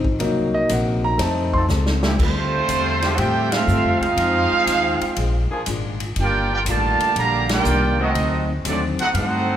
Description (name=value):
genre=jazz, big band swing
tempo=121 BPM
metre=4/4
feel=swing 69% on 8ths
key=D minor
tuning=A4 = 441 Hz
part: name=picked plugged-in steel-string acoustic guitar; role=accompaniment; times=0.0-9.5 s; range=Bb2 to A4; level=-29 LUFS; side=left 5 dB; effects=none
part: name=warm concert grand piano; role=accompaniment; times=0.0-1.6 s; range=F3 to C6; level=-21 LUFS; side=left 1 dB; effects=none
part: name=upright bass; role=bass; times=0.0-9.6 s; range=G1 to A2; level=-23 LUFS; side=equal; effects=none
part: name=swinging big-band drum kit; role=drums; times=0.0-9.3 s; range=crash cymbal, hi-hat, kick drum, ride cymbal, snare drum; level=-27 LUFS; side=equal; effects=none
part: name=bright trombone section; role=sustained chords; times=1.5-8.1 s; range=D2 to A4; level=-30 LUFS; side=left 1 dB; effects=none
part: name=clear trumpet section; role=melody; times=2.2-9.6 s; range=A3 to Bb5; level=-21 LUFS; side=right 3 dB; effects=none
part: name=clear trombone section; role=second line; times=2.2-9.6 s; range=Bb2 to G4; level=-24 LUFS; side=right 2 dB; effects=none
room=moderate recital hall reverb, RT60 1.7 s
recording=recorded in a church or concert hall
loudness=-17 LUFS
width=side -10 dB against mid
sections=0.0-2.2 A section; 2.2-9.6 B section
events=grand piano solo 0.0-2.2; drum fill 1.7-2.2; band accent 3.4, 7.4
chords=0.2 Cm7b5; 1.2 F7; 2.2 Dm11; 4.2 Fm7; 5.2 Bb7; 6.2 Ebmaj9; 8.1 D7b9